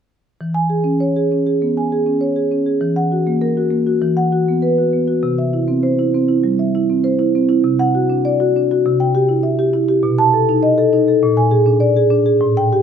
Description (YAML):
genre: classical, contemporary piece for solo marimba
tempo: 100 BPM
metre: 4/4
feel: straight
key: unclear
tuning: A4 = 440 Hz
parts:
  - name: marimba with medium mallets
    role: solo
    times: 0.4-12.8 s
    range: A2 to A5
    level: -14 LUFS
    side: equal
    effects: none
room: moderate stone room reverb, RT60 1.4 s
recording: minimal, uncompressed stereo recording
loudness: -14 LUFS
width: side -7 dB against mid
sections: 0.4-12.8 A section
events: none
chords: 0.4 E6; 2.8 F#7/E; 4.0 Esus2; 5.2 C; 7.7 D7/C; 8.8 Em/C; 10.0 B7; 11.2 A#7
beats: | 0.40 1.00 1.61 2.22 | 2.82 3.42 4.03 4.64 | 5.24 5.85 6.45 7.05 | 7.66 8.25 8.85 9.44 | 10.04 10.63 11.22 11.81 | 12.41